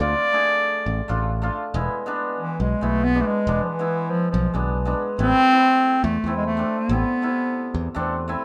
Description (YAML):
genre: klezmer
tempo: 140 BPM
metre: 4/4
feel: straight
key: unclear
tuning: A4 = 440 Hz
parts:
  - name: warm clarinet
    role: melody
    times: 0.0-8.1 s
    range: E3 to D5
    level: -22 LUFS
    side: equal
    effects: none
  - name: cimbalom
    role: accompaniment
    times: 0.0-8.4 s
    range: C3 to G#4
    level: -29 LUFS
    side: equal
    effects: none
  - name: modern bright picked electric bass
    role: bass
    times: 0.0-8.3 s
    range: E1 to E2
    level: -27 LUFS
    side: equal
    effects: none
room: moderate studio ambience, RT60 0.5 s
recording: none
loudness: -22 LUFS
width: mono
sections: 0.0-1.7 A section; 1.7-8.4 A section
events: none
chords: 0.0 Dm; 1.7 E; 5.2 Am